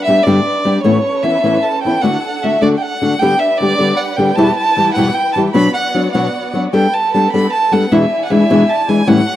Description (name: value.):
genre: mexican folk, mariachi.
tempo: 102 BPM (dotted quarters).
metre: 6/8.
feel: straight.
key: unclear.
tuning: A4 = 440 Hz.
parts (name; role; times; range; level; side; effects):
rich violin; melody; 0.0-9.4 s; C#5 to B5; -16 LUFS; right 1 dB; none.
warm studio violin section; sustained chords; 0.0-9.4 s; G3 to G#5; -23 LUFS; right 1 dB; none.
flamenco guitar; accompaniment; 0.1-9.2 s; E2 to A4; -14 LUFS; left 2 dB; none.
room: light reverb, small room ambience.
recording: dry, close 1970s-style studio recording.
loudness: -11 LUFS.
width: side -12 dB against mid.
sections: 0.0-9.4 A section.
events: none.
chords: 0.0 G; 0.9 Aadd9; 2.0 D; 3.2 G/D; 4.4 Em; 5.6 Bm; 6.7 Gadd9; 7.9 E7.